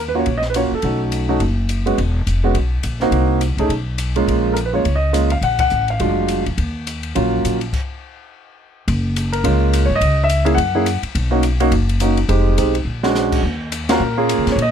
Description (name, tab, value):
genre	jazz piano trio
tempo	209 BPM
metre	4/4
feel	swing 59% on 8ths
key	Eb minor, F# major from 8.9 s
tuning	A4 = 440 Hz
part	warm upright piano	melody	0.0-14.7 s	Gb3 to Gb5	-18 LUFS	right 2 dB	none
part	upright bass	bass	0.0-14.7 s	E1 to C#3	-19 LUFS	left 1 dB	none
part	open jazz drum kit	drums	0.3-14.7 s	crash cymbal, hi-hat, kick drum, ride cymbal, snare drum	-27 LUFS	left 3 dB	none
room	little or no reverb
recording	close, detailed microphones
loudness	-16 LUFS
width	side -8 dB against mid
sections	0.0-8.9 A section; 8.9-14.7 B section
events	band accent 5.6, 13.9; stop 7.7-8.9; drum fill 12.9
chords	0.0 Ebm9; 0.8 B9; 2.0 E5; 3.1 Cm7b5; 3.7 N.C.; 4.3 Bbm7; 5.4 Bb7b13; 6.6 Ebm9; 7.7 N.C.; 8.9 F#maj9; 10.0 C#madd9; 10.6 N.C.; 11.1 Bmaj7; 12.3 Fm7; 12.9 A#7alt; 13.4 D#7sus2